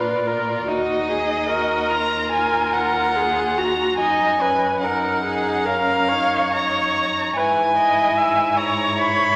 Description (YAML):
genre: classical, slow romantic movement for string quartet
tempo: 73 BPM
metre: 4/4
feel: rubato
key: Eb minor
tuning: A4 = 441 Hz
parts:
  - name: warm violin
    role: melody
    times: 0.0-9.4 s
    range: D5 to B5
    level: -23 LUFS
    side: equal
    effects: none
  - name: rich violin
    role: second line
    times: 0.0-9.4 s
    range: Db4 to Gb4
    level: -30 LUFS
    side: equal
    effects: none
  - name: warm viola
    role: accompaniment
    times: 0.0-9.4 s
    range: Gb4 to E5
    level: -24 LUFS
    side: equal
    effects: none
  - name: rich cello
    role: bass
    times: 0.0-9.4 s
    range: Eb2 to Bb2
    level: -34 LUFS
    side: equal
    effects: none
room: wet scoring stage reverb, RT60 1.7 s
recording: none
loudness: -20 LUFS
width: mono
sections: 0.0-9.4 A section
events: none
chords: 0.0 Bb; 0.7 Ebm; 4.0 Ebm/Gb; 7.4 E/G#